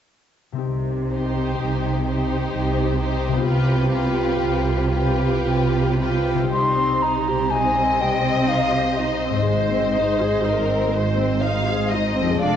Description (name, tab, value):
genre	classical, slow romantic movement for symphony orchestra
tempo	53-66 BPM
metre	3/4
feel	rubato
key	C minor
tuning	A4 = 440 Hz
part	concert harp	arpeggios	0.5-12.6 s	F2 to Ab4	-27 LUFS	left 6 dB	none
part	warm studio cello section	bass	0.6-12.6 s	F2 to C3	-25 LUFS	right 2 dB	none
part	warm studio double bass section	bass	0.6-12.6 s	F1 to C2	-26 LUFS	right 3 dB	none
part	warm studio violin section	melody	1.1-12.6 s	B4 to D5	-31 LUFS	left 4 dB	none
part	warm studio violin section	second line	1.1-12.6 s	G4 to F5	-27 LUFS	left 2 dB	none
part	warm studio viola section	accompaniment	1.1-12.6 s	G3 to Ab4	-26 LUFS	right 2 dB	none
part	mellow hollow silver concert flute	second line	6.5-12.6 s	Eb5 to C6	-22 LUFS	equal	none
room	moderate scoring stage reverb, RT60 1.7 s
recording	nothing above 7.9 kHz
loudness	-18 LUFS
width	side -9 dB against mid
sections	0.6-6.5 A section; 6.5-12.6 B section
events	none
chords	0.6 Cm; 9.5 Ab